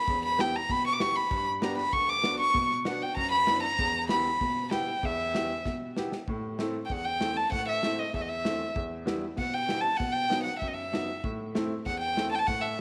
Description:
klezmer; 97 BPM; 2/4; straight; E dorian sharp4, A dorian sharp4 from 6.3 s; A4 = 440 Hz
rich violin; melody; 0.0-12.8 s; D#5 to D6; -30 LUFS; equal
bright upright piano; accompaniment; 0.1-12.8 s; D2 to G4; -36 LUFS; equal
modern studio drum kit; drums; 0.1-12.6 s; kick drum, snare drum; -38 LUFS; equal
moderate echo chamber reverb, RT60 2.3 s; -29 LUFS; mono
0.0-6.3 A section; 6.3-12.8 B section
drum fill 5.7-6.3
0.0 Em; 1.3 G; 2.6 Bm; 3.8 Em; 6.3 Am; 8.8 Em; 10.0 B; 11.2 Am
| 0.07 0.69 | 1.32 1.94 | 2.56 3.18 | 3.80 4.42 | 5.04 5.66 | 6.28 6.90 | 7.52 8.14 | 8.76 9.38 | 10.00 10.62 | 11.24 11.86 | 12.48

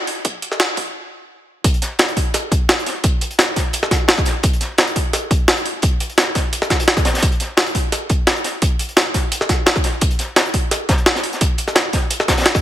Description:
drum and bass; 172 BPM; 4/4; straight
jungle sampler-style drum kit; drums; 0.1-12.6 s; hi-hat, snare drum; -17 LUFS; equal
electronic kick drum; drums; 0.2-12.6 s; -18 LUFS; equal
crunchy breakbeat drum kit; drums; 1.6-12.6 s; hi-hat, snare drum; -24 LUFS; left 1 dB; high-pass filter on hats, high-pass filter on snare, high-pass filter on room
light reverb; high-pass filter; -15 LUFS; side -12 dB against mid
0.0-1.6 A section; 1.6-12.6 B section
build-up 0.0-1.6; stop 0.9-1.6; drop 1.6-12.6
| 0.25 0.60 0.95 1.29 | 1.64 1.99 2.34 2.69 | 3.04 3.39 3.74 4.09 | 4.43 4.78 5.13 5.48 | 5.83 6.18 6.53 6.88 | 7.23 7.57 7.92 8.27 | 8.62 8.97 9.32 9.67 | 10.02 10.37 10.71 11.06 | 11.41 11.76 12.11 12.46

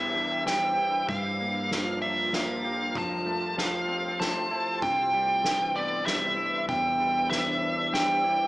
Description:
post-rock; 96 BPM; 3/4; straight; C major; A4 = 445 Hz
nasal lead guitar with a parked wah; melody; 0.0-8.5 s; D5 to A5; -26 LUFS; right 1 dB; overdrive
shimmering ambient pad; sustained chords; 0.0-8.5 s; C3 to E5; -36 LUFS; equal; chorus, built-in reverb
clean electric guitar; arpeggios; 0.0-8.5 s; E2 to G4; -34 LUFS; left 1 dB
hollow-body short-scale fingered electric bass; bass; 0.0-8.5 s; C2 to G2; -43 LUFS; equal
soft-mallet drum kit; drums; 0.5-8.1 s; kick drum, ride cymbal, snare drum; -34 LUFS; equal
wet large studio reverb, RT60 1.2 s; band playing live in one room, small speaker sound; -24 LUFS; side -19 dB against mid
0.0-8.5 A section
0.0 Em7; 1.1 Gm7; 3.0 Fmaj7; 4.8 Cmaj7; 6.7 Em7
0.46 | 1.09 1.71 2.33 | 2.95 3.58 4.20 | 4.82 5.44 6.07 | 6.69 7.31 7.93

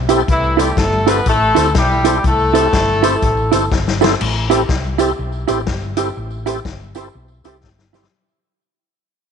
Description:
ska; 122 BPM; 4/4; swing 61% on 8ths; A minor; A4 = 439 Hz
mellow horn section; melody; 0.0-3.7 s; E3 to B4; -16 LUFS; left 2 dB
hollow-body short-scale fingered electric bass; bass; 0.0-8.1 s; G1 to D2; -21 LUFS; left 1 dB
hollow-body jazz guitar; accompaniment; 0.1-8.0 s; E4 to C5; -19 LUFS; right 10 dB
tonewheel organ; stabs; 0.1-8.1 s; C4 to A4; -23 LUFS; left 12 dB; chorus vibrato, slow rotary speaker
vintage drum kit; drums; 0.1-8.1 s; crash cymbal, hi-hat, kick drum, snare drum; -20 LUFS; left 3 dB
tambourine; percussion; 0.1-8.0 s; -37 LUFS; right 11 dB; tape echo
moderate echo chamber reverb, RT60 2.0 s, small room reverb; 1960s-style stereo with parts hard left and right, nothing above 11.0 kHz; -13 LUFS; side -7 dB against mid
0.0-4.2 A section; 4.2-8.1 B section
drum fill 3.7-4.2, 7.6-8.1; fade-out 4.2-8.1
0.0 Am7
| 0.28 0.77 1.26 1.75 | 2.24 2.73 3.22 3.71 | 4.20 4.69 5.18 5.67 | 6.16 6.65 7.14 7.63

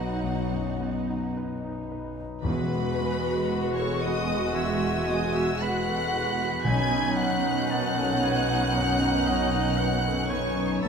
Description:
cinematic, emotional film score for orchestra; 57 BPM; 4/4; rubato; E major; A4 = 440 Hz
rich studio violin section; melody; 0.0-10.9 s; F#5 to G#6; -34 LUFS; left 1 dB
clear clarinet; second line; 0.0-1.3 s; F#4; -45 LUFS; equal
mellow hollow concert flute; second line; 0.0-10.9 s; B4 to G#5; -34 LUFS; equal
rich studio violin section; second line; 0.0-10.9 s; F#4 to G#5; -34 LUFS; left 2 dB
warm concert grand piano; accompaniment; 0.0-10.9 s; B1 to B4; -33 LUFS; equal
warm studio viola section; accompaniment; 0.0-10.9 s; G#3 to F#4; -32 LUFS; right 2 dB
warm French horn section; sustained chords; 0.0-10.9 s; D#3 to F#4; -32 LUFS; left 4 dB
concert harp; arpeggios; 0.0-10.9 s; A2 to B5; -35 LUFS; left 7 dB
dark studio cello section; bass; 0.0-10.9 s; E2 to D#4; -34 LUFS; right 5 dB
rich studio double bass section; bass; 0.0-10.9 s; E1 to B1; -33 LUFS; right 4 dB
timpani; percussion; 2.4-8.2 s; E2 to B2; -32 LUFS; equal
clear oboe; second line; 4.6-10.9 s; D#5 to B5; -35 LUFS; right 1 dB
wet scoring stage reverb, RT60 1.7 s; -24 LUFS; side -6 dB against mid
0.0-2.4 A section; 2.4-10.9 B section
0.0 B; 2.4 Eadd9; 6.6 Badd9
0.24 1.34 | 2.44 3.50 4.55 5.60 | 6.65 7.70 8.76 9.80 | 10.84

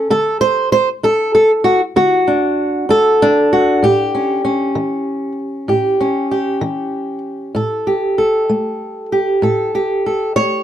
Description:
acoustic country blues, solo or duo; 64 BPM (dotted quarters); 12/8; straight; A mixolydian; A4 = 439 Hz
fingerpicked old ladder-braced acoustic guitar; solo; 0.0-10.6 s; A2 to C#5; -13 LUFS; equal
light reverb; dark, warm production; -13 LUFS; side -10 dB against mid
0.0-10.6 A section
0.1 N.C.; 3.8 A7
| 0.10 1.03 1.96 2.90 | 3.83 4.76 5.70 6.63 | 7.56 8.49 9.43 10.36

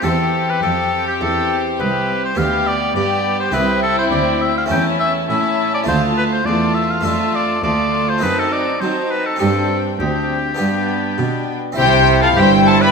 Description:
classical, baroque-style concerto movement with solo episodes; 102 BPM; 4/4; straight; C major; A4 = 441 Hz
bright oboe; melody; 0.0-12.9 s; F4 to G5; -20 LUFS; left 1 dB
warm studio violin section; melody; 0.0-12.9 s; F5 to B5; -23 LUFS; left 6 dB
rich chamber violin section; second line; 0.0-12.9 s; D4 to D5; -22 LUFS; left 3 dB
harpsichord; accompaniment; 0.0-12.9 s; C2 to A4; -23 LUFS; right 1 dB
warm chamber viola section; accompaniment; 0.0-12.9 s; A3 to E4; -23 LUFS; right 1 dB
rich chamber cello section; bass; 0.0-12.9 s; C2 to F#3; -22 LUFS; right 5 dB
rich chamber double bass section; bass; 11.8-12.9 s; G1 to C2; -21 LUFS; right 5 dB
moderate scoring stage reverb, RT60 1.8 s; minimal, uncompressed stereo recording; -14 LUFS; side -5 dB against mid
0.0-11.8 A section; 11.8-12.9 B section
0.0 C/E; 2.4 G/D; 3.5 C; 4.7 A/E; 5.9 Dm; 7.0 Dm/F; 8.2 F#dim7; 9.4 Gsus4; 10.6 G; 11.8 C
| 0.05 0.63 1.22 1.80 | 2.38 2.96 3.55 4.13 | 4.71 5.30 5.88 6.47 | 7.05 7.64 8.22 8.81 | 9.41 10.00 10.60 11.19 | 11.78 12.37

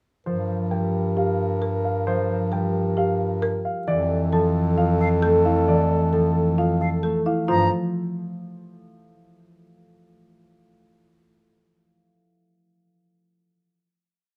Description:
classical, minimalist pattern music; 133 BPM; 4/4; straight; G dorian; A4 = 440 Hz
warm baby grand piano; melody; 0.3-7.7 s; A4 to A5; -31 LUFS; equal
warm French horn; second line; 0.3-7.2 s; A4 to Bb4; -30 LUFS; equal
concert harp; accompaniment; 0.3-7.7 s; E3 to A3; -27 LUFS; equal
clear bass clarinet; bass; 0.3-7.7 s; F2 to G2; -28 LUFS; equal
folk marimba with medium mallets; arpeggios; 0.7-7.7 s; E4 to Bb4; -29 LUFS; equal
bright silver concert flute; arpeggios; 5.0-7.7 s; F5 to Bb5; -27 LUFS; equal
little or no reverb; close, detailed microphones; -22 LUFS; mono
0.3-7.5 A section; 7.5-9.3 final chord
0.3 Gm7; 3.9 F; 7.5 Gm7
| 0.27 0.72 1.17 1.62 | 2.07 2.52 2.97 3.42 | 3.88 4.33 4.78 5.23 | 5.68 6.13 6.58 7.03 | 7.49

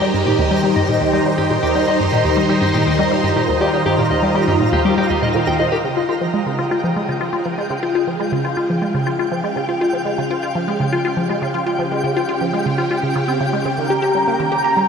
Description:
ambient, sequencer-driven space music; 121 BPM; 4/4; straight; Db lydian from 5.8 s; A4 = 439 Hz
phased string machine; sustained chords; 0.0-14.9 s; Db3 to F5; -20 LUFS; right 1 dB; ensemble chorus, phaser
clean electric guitar; arpeggios; 0.0-5.8 s; G4 to G5; -25 LUFS; left 1 dB; auto-pan, ping-pong delay
resonant blip pluck; riff; 0.0-14.9 s; Eb2 to G4; -19 LUFS; left 1 dB; phaser, ping-pong delay
twinkling granular texture; texture; 0.0-14.9 s; G5 to Bb5; -26 LUFS; right 1 dB; built-in reverb
mellow horn-like synth lead; melody; 13.8-14.9 s; Bb5; -18 LUFS; right 2 dB; ensemble chorus
wet shimmer reverb, RT60 8.4 s; -15 LUFS; side -6 dB against mid
0.0-5.8 A section; 5.8-14.9 B section
fade-in on string machine 5.8-14.9
0.0 Eb6; 5.8 Db; 13.8 Eb/Db
0.39 0.89 1.38 | 1.88 2.37 2.87 3.37 | 3.86 4.36 4.85 5.35 | 5.84 6.34 6.84 7.33 | 7.83 8.32 8.82 9.32 | 9.81 10.31 10.80 11.30 | 11.80 12.29 12.79 13.28 | 13.78 14.28 14.77

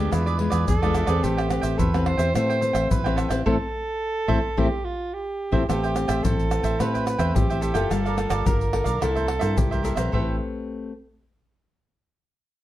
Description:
samba and choro; 108 BPM; 4/4; straight; A minor; A4 = 444 Hz
mellow soprano saxophone; second line; 0.0-10.4 s; E4 to C5; -28 LUFS; right 3 dB
cavaquinho; accompaniment; 0.0-10.4 s; E4 to G5; -30 LUFS; right 4 dB
nylon-string guitar; accompaniment; 0.0-10.9 s; G2 to B4; -28 LUFS; left 4 dB
fingered electric bass; bass; 0.0-10.4 s; F#1 to A2; -26 LUFS; equal
tube shaker, surdo, pandeiro and tamborim; percussion; 0.1-10.3 s; -26 LUFS; equal
moderate studio reverb, RT60 0.6 s; dark, warm production; -21 LUFS; side -14 dB against mid
0.0-5.7 A section; 5.7-10.1 B section; 10.1-12.3 C section
band accent 3.5-5.7
0.1 E7b9; 1.2 Am9; 7.9 Gm9; 9.0 C6; 10.1 Am9
0.13 0.68 | 1.24 1.79 2.35 2.91 | 3.46 4.02 4.58 5.13 | 5.69 6.24 6.80 7.36 | 7.91 8.46 9.02 9.57 | 10.13 10.68

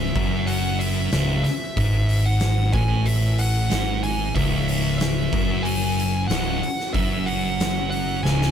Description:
stoner and doom metal; 93 BPM; 4/4; straight; C# minor; A4 = 441 Hz
fuzz lead guitar; melody; 0.0-8.5 s; E5 to G#5; -28 LUFS; equal; distortion, tape echo
thick fuzz guitar; riff; 0.0-8.5 s; C#2 to A2; -25 LUFS; left 6 dB; distortion
thick fuzz guitar; riff; 0.0-8.5 s; C#2 to A2; -25 LUFS; right 7 dB; distortion
growling fingered electric bass; bass; 0.0-8.5 s; C#1 to A1; -27 LUFS; equal; overdrive
oversized low-tuned drum kit; drums; 0.2-8.5 s; hi-hat, kick drum, snare drum; -27 LUFS; equal
little or no reverb; -19 LUFS; side -8 dB against mid
0.0-8.5 A section
drum fill 8.2
0.0 C#m
0.48 1.12 | 1.77 2.42 3.06 3.71 | 4.36 5.01 5.65 6.30 | 6.95 7.60 8.24

